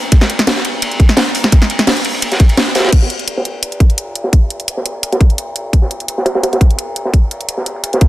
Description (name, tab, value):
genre	drum and bass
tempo	171 BPM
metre	4/4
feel	swing 53% on 16ths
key	none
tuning	none
part	crunchy breakbeat drum kit	drums	0.1-8.1 s	hi-hat, ride cymbal, snare drum	-18 LUFS	equal	high-pass filter on cymbals, low-pass filter on cymbals, high-pass filter on hats, low-pass filter on hats, high-pass filter on snare, low-pass filter on snare, high-pass filter on room, low-pass filter on room
part	electronic kick drum	drums	0.1-8.1 s	none	-8 LUFS	equal	none
part	garage drum kit	drums	0.1-8.1 s	crash cymbal, hi-hat, snare drum	-16 LUFS	equal	none
room	light reverb, small room ambience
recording	dense, heavily limited modern master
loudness	-12 LUFS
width	side -16 dB against mid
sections	0.0-2.9 A section; 2.9-8.1 B section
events	drop 0.0-2.9; kick drops out 2.6-2.9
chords	none